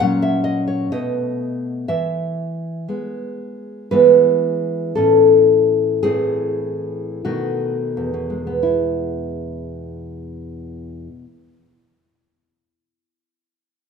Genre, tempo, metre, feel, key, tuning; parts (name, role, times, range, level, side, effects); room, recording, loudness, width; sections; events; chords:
romantic piece for solo classical guitar; 41-67 BPM; 2/4; rubato; E major; A4 = 441 Hz
nylon-string guitar; solo; 0.0-11.7 s; E2 to F#5; -17 LUFS; equal
wet recital hall reverb, RT60 1.6 s; minimal, uncompressed stereo recording; -16 LUFS; side -5 dB against mid
0.0-3.9 A section; 3.9-8.6 B section; 8.6-13.9 C section
slowing down 2.9-8.6
0.0 F#/A#; 0.9 B7; 1.9 E; 5.0 A; 6.1 Ammaj7; 7.3 B7; 8.6 E